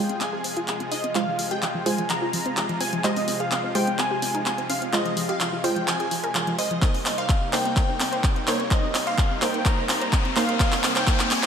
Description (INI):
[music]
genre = progressive house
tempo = 127 BPM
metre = 4/4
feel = straight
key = F minor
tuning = A4 = 440 Hz
[part]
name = plucky unison lead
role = melody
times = 0.0-11.5 s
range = Db5 to Bb5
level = -28 LUFS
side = left 1 dB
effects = ping-pong delay
[part]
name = supersaw pad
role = sustained chords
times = 0.0-11.5 s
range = C3 to Ab4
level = -32 LUFS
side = equal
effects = sidechain pumping
[part]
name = analog pluck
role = arpeggios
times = 0.0-11.5 s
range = F3 to C5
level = -31 LUFS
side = equal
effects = chorus, cassette tape, sidechain pumping, analog delay
[part]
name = wide unison pluck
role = stabs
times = 0.0-11.5 s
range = Ab3 to C5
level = -29 LUFS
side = right 3 dB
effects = sidechain pumping, analog delay
[part]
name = pop drum kit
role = drums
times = 0.1-11.5 s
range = handclaps, hi-hat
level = -27 LUFS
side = equal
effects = overdrive
[part]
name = electronic kick drum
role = drums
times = 6.8-11.2 s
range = none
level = -22 LUFS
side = equal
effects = none
[part]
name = riser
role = sound effects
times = 8.5-11.5 s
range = none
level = -32 LUFS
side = left 3 dB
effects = none
[sound]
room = wet plate reverb, RT60 2.7 s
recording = dreamy mix soaked in reverb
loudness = -21 LUFS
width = side -7 dB against mid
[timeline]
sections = 0.0-11.5 A section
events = build-up 0.0-11.5; drum fill 0.0-11.5; filter sweep on synth arpeggio sound 0.0-11.5; filter sweep on synth pluck 0.0-11.5; riser 8.5-11.5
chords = 0.0 Fm; 6.8 Cm7